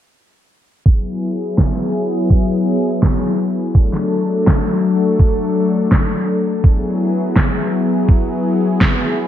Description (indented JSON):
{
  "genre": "synthwave",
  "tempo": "83 BPM",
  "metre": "4/4",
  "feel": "straight",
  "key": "E major",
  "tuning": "A4 = 442 Hz",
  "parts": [
    { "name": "warm analog pad", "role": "sustained chords", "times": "0.9-9.3 s", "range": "F#3 to A4", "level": "-16 LUFS", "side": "left 2 dB", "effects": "chorus, sidechain pumping" },
    { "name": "electronic kick drum", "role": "drums", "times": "0.9-9.0 s", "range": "none", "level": "-13 LUFS", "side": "right 1 dB", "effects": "overdrive, small room reverb" },
    { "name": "electronic snare drum", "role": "drums", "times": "1.6-9.0 s", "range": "none", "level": "-19 LUFS", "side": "equal", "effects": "small room reverb, gated reverb" }
  ],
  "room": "moderate lush hall reverb, RT60 2.0 s",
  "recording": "bright 1980s-style digital production, low-pass filter",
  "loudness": "-14 LUFS",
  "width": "side -11 dB against mid",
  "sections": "0.9-9.3 A section",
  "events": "filter sweep 0.9-9.3",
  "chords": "0.9 Eadd9; 3.8 D; 6.6 Eadd9"
}